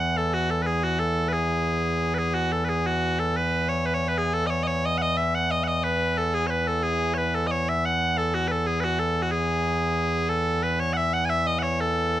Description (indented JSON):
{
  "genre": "celtic folk",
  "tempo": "121 BPM (dotted quarters)",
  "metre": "6/8",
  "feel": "straight",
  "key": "E major",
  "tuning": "A4 = 440 Hz",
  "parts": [
    { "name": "loud bright bagpipes", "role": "solo", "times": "0.0-12.2 s", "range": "E2 to G#5", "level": "-22 LUFS", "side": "equal", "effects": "none" }
  ],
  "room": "moderate studio ambience, RT60 0.5 s",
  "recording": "dark, warm production",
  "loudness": "-22 LUFS",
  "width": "side -13 dB against mid",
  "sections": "0.0-2.3 A section; 2.3-10.3 A section; 10.3-12.2 B section",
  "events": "none",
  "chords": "none"
}